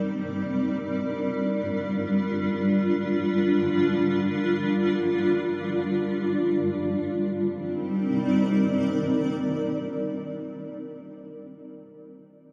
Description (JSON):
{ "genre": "ambient", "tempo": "free time", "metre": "none", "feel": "none", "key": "C minor", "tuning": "A4 = 439 Hz", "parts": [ { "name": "granular cloud pad", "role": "sustained chords", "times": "0.0-10.4 s", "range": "G3 to D5", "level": "-26 LUFS", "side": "equal", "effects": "built-in reverb" } ], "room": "wet huge ambient reverb, RT60 7.3 s", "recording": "none", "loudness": "-25 LUFS", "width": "mono", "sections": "0.0-7.0 A section; 7.0-10.4 B section", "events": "none", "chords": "0.1 Gm7; 7.0 Cm9", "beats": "free time" }